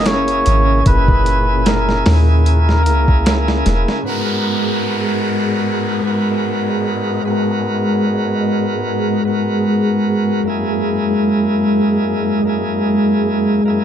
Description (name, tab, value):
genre	trip hop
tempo	75 BPM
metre	4/4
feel	swing 55% on 16ths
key	G# minor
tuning	A4 = 440 Hz
part	trumpet with cup mute	melody	0.0-3.6 s	A#4 to C#5	-21 LUFS	equal	dub echo
part	bright tonewheel organ	accompaniment	0.0-13.8 s	F#2 to A#4	-20 LUFS	right 1 dB	overdrive, stopped rotary speaker, harmonic tremolo, tape echo
part	string machine, cellos	sustained chords	0.0-13.8 s	G#3 to G#4	-18 LUFS	equal	ensemble chorus
part	soft 808-style bass	bass	0.0-3.9 s	E1 to D#2	-14 LUFS	equal	none
part	dusty soul sampler-style drum kit	drums	0.1-4.1 s	hi-hat, kick drum, snare drum	-17 LUFS	equal	vintage 12-bit sampler grit
part	downlifter	sound effects	4.1-10.5 s	none	-27 LUFS	left 1 dB	none
room	moderate spring reverb, RT60 1.9 s, digital ambience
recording	none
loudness	-13 LUFS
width	side -9 dB against mid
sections	0.0-4.1 A section; 4.1-13.8 B section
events	none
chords	0.0 F#7; 4.1 G#m7; 10.5 F#7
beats	0.07 | 0.86 1.67 2.46 3.27 | 4.07 4.87 5.67 6.46 | 7.26 8.06 8.87 9.66 | 10.46 11.27 12.06 12.87 | 13.66